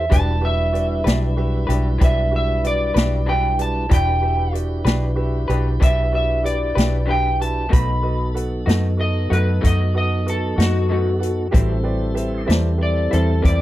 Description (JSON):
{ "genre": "slow blues", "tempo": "63 BPM (dotted quarters)", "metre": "12/8", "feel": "straight", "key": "E minor", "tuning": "A4 = 440 Hz", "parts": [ { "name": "electric slide guitar", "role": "melody", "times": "0.0-13.6 s", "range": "F#4 to B5", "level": "-23 LUFS", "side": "equal", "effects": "none" }, { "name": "warm concert grand piano", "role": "accompaniment", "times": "0.0-13.6 s", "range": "F#4 to F#5", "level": "-30 LUFS", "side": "right 5 dB", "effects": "none" }, { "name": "mellow tonewheel organ", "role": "sustained chords", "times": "0.0-13.6 s", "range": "F#3 to B4", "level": "-27 LUFS", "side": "left 1 dB", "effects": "slow rotary speaker" }, { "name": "vintage muted fingered electric bass", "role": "bass", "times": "0.0-13.6 s", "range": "E1 to F#2", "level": "-20 LUFS", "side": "equal", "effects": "none" }, { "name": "electric guitar through a small old amp", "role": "accompaniment", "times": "0.1-13.6 s", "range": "A2 to B4", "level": "-28 LUFS", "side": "left 4 dB", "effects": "tremolo" }, { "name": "swinging big-band drum kit", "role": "drums", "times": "0.1-13.6 s", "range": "hi-hat, kick drum, snare drum", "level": "-18 LUFS", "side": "equal", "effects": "none" } ], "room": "little or no reverb", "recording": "dry, close 1970s-style studio recording", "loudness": "-17 LUFS", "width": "side -15 dB against mid", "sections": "0.0-13.6 A section", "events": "none", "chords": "0.1 Em7; 7.7 B7; 11.5 Am7" }